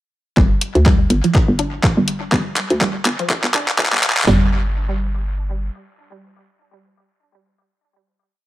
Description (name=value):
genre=minimal techno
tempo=123 BPM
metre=4/4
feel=swing 57% on 16ths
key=unclear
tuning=A4 = 440 Hz
part: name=resonant blip pluck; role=riff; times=0.4-4.5 s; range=F3 to D4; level=-23 LUFS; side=right 1 dB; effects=analog chorus, sidechain pumping, analog delay
part: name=hollow knocking FM bass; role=bass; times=0.4-5.7 s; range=G1 to D2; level=-18 LUFS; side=equal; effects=sidechain pumping
part: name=garage drum kit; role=drums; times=0.4-4.3 s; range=handclaps, hi-hat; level=-20 LUFS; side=equal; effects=analog delay
part: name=punchy analog drum machine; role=drums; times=0.4-4.4 s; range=kick drum, snare drum, toms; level=-16 LUFS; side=equal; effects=none
room=light reverb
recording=echo-heavy mix, high-pass filter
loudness=-15 LUFS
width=side -16 dB against mid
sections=0.4-4.3 build; 4.3-8.2 final note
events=build-up 0.4-4.3; drum fill 0.4-4.3; filter sweep on synth arpeggio sound 0.4-4.3; filter sweep 0.4-4.3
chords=0.4 G5; 4.3 N.C.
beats=| 0.37 0.86 1.35 1.83 | 2.32 2.81 3.30 3.79 | 4.27 4.76 5.25